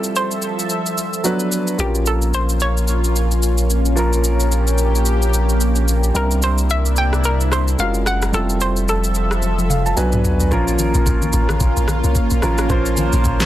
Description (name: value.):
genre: amapiano.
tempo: 110 BPM.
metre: 4/4.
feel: swing 58% on 16ths.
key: unclear.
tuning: A4 = 440 Hz.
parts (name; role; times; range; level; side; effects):
hollow square pluck; melody; 0.0-10.2 s; G4 to G5; -23 LUFS; equal; chorus, tape echo.
warm grand piano; accompaniment; 0.0-13.5 s; F3 to A5; -22 LUFS; right 1 dB; none.
lush unison pad; sustained chords; 0.0-13.5 s; C3 to E5; -24 LUFS; left 1 dB; chorus, phaser.
smooth R&B drum kit; drums; 0.0-13.5 s; kick drum, rim click, shaker, snare drum, toms; -22 LUFS; equal; none.
punchy sub bass; bass; 1.8-10.5 s; F1 to C2; -18 LUFS; equal; none.
deep log drum bass; bass; 10.5-13.5 s; A1 to C2; -18 LUFS; equal; none.
congas; percussion; 10.5-13.5 s; none; -27 LUFS; left 2 dB; none.
room: digital ambience.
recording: dense, heavily limited modern master.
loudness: -15 LUFS.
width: side -13 dB against mid.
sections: 0.0-10.5 A section; 10.5-13.5 B section.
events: drum fill 9.4-10.5; grand piano fill 9.4-10.5.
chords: 0.0 Fmaj7; 1.2 Bm; 1.8 Bbm; 6.2 C9; 7.8 Gbmaj7; 8.3 Fmaj7; 10.0 Bm; 10.5 Bbm.